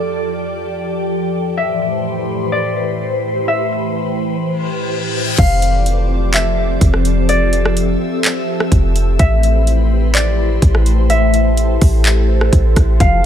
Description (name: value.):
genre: hip hop, atmospheric cloud-rap.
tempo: 126 BPM.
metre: 4/4.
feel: half-time.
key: A minor.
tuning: A4 = 440 Hz.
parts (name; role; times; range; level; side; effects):
concert harp; melody; 0.0-13.3 s; D5 to F5; -20 LUFS; left 2 dB; low-pass filter, ping-pong delay.
glassy FM pad; sustained chords; 0.0-13.3 s; F2 to E5; -19 LUFS; left 1 dB; ensemble chorus, built-in reverb, phaser, sidechain pumping.
reverse cymbal; sound effects; 4.6-5.4 s; none; -22 LUFS; left 6 dB; none.
clean 808-style bass; bass; 5.4-13.3 s; F1 to A1; -14 LUFS; equal; none.
trap drum kit; drums; 5.4-13.1 s; crash cymbal, handclaps, hi-hat, kick drum, rim click; -15 LUFS; equal; none.
clean electric guitar; arpeggios; 13.0-13.2 s; F3; -22 LUFS; left 6 dB; low-pass filter.
room: little or no reverb.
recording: none.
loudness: -13 LUFS.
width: side -10 dB against mid.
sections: 0.0-5.4 A section; 5.4-13.3 B section.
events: reverse cymbal 4.6-5.4.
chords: 0.0 F69; 1.6 Am7; 5.4 F69; 9.2 Am7.